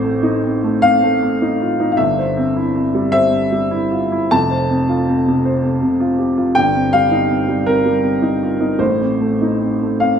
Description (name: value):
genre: neoclassical minimalist piano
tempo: 53 BPM (dotted quarters)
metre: 6/8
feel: uneven beats, rubato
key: unclear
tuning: A4 = 442 Hz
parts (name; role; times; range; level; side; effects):
- warm baby grand piano; solo; 0.0-10.2 s; F1 to A5; -14 LUFS; equal; none
room: moderate large studio reverb, RT60 1.2 s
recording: band playing live in one room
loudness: -14 LUFS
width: side -7 dB against mid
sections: 0.0-10.2 A section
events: none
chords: 0.0 Adim; 2.0 C/G; 4.3 F; 6.6 Cm/G; 8.8 Adim